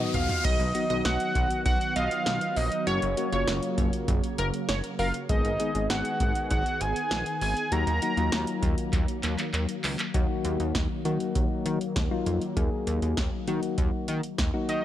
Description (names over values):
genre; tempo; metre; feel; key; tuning
synth-pop; 99 BPM; 4/4; straight; Eb minor; A4 = 445 Hz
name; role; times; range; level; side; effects
fat analog lead; melody; 0.0-8.6, 14.7-14.8 s; Db5 to Bb5; -30 LUFS; right 1 dB; tape echo
soft electric-piano-like synth keys; accompaniment; 0.0-14.8 s; F#3 to Ab4; -32 LUFS; left 4 dB; chorus
warm analog pad; sustained chords; 0.0-14.8 s; Db3 to Ab4; -34 LUFS; equal; chorus
chorused synth bass; bass; 0.1-14.8 s; Gb1 to Eb3; -30 LUFS; equal; none
electro analog drum machine; drums; 0.1-14.8 s; crash cymbal, handclaps, hi-hat, kick drum, snare drum, toms; -29 LUFS; equal; none
funky polysynth comp; second line; 0.4-5.1 s; Bb4 to D#5; -34 LUFS; right 2 dB; chorus, tape echo
room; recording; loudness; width
light reverb, digital ambience; none; -25 LUFS; side -12 dB against mid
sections
0.4-10.1 A section; 10.1-14.8 B section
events
drum fill 0.0-0.4, 8.9-10.1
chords
0.4 B; 2.9 Gb; 5.3 Abm; 7.7 Ebm